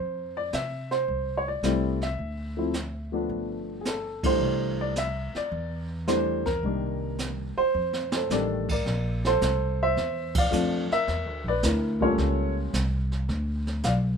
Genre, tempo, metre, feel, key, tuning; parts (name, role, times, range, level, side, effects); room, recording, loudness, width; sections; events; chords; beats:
jazz piano trio; 108 BPM; 4/4; swing 69% on 8ths; A4 = 442 Hz
dark baby grand piano; melody; 0.0-14.0 s; Eb3 to F5; -26 LUFS; equal
upright bass; bass; 0.0-14.2 s; G1 to C3; -29 LUFS; equal
jazz brush drum kit; drums; 0.5-14.2 s; brushed snare drum, crash cymbal, hi-hat, kick drum, ride cymbal, snare drum; -32 LUFS; right 2 dB
light reverb; minimal, uncompressed stereo recording; -25 LUFS; side -6 dB against mid
0.0-8.9 A section; 8.9-14.2 B section
band accent 4.1, 10.2; drum fill 7.7-8.3
0.0 Fmaj7(no3); 2.2 Dm; 3.3 G7; 4.4 C6; 6.6 Cm7; 7.7 F13; 8.9 Bbmaj9; 11.1 E7(b5, no3); 12.2 A7alt; 13.3 N.C.
0.52 1.08 1.63 | 2.19 2.74 3.30 3.85 | 4.41 4.97 5.52 6.08 | 6.63 7.19 7.75 8.30 | 8.86 9.41 9.97 10.52 | 11.08 11.63 12.18 12.74 | 13.29 13.85